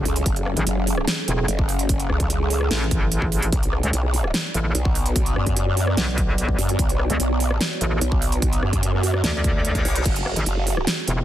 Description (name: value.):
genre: heavy wobble dubstep.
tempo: 147 BPM.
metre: 4/4.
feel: half-time.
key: unclear.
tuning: A4 = 441 Hz.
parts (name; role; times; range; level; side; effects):
evolving wavetable pad; sustained chords; 0.0-11.2 s; F#3 to D5; -29 LUFS; right 2 dB; phaser, built-in reverb, sidechain pumping.
metallic wobble bass; bass; 0.0-11.2 s; E1 to D2; -22 LUFS; equal; chorus, overdrive.
growl bass; bass; 0.1-10.9 s; F#1 to F#2; -22 LUFS; equal; chorus, overdrive.
big-room dance drum kit; drums; 0.1-11.2 s; crash cymbal, hi-hat, rim click, snare drum; -26 LUFS; right 1 dB; none.
electronic kick drum; drums; 0.3-10.1 s; none; -23 LUFS; equal; none.
reverse cymbal; sound effects; 9.5-10.1 s; none; -31 LUFS; left 4 dB; none.
room: little or no reverb.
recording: dense, heavily limited modern master.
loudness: -19 LUFS.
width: side -12 dB against mid.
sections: 0.0-11.2 A section.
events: reverse cymbal 9.5-10.1.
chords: 0.0 F#madd9; 3.5 Bmadd9; 10.1 F#madd9.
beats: | 0.26 0.67 1.07 1.48 | 1.89 2.30 2.71 3.12 | 3.52 3.93 4.34 4.75 | 5.16 5.57 5.97 6.38 | 6.79 7.20 7.61 8.01 | 8.42 8.83 9.24 9.65 | 10.05 10.46 10.87.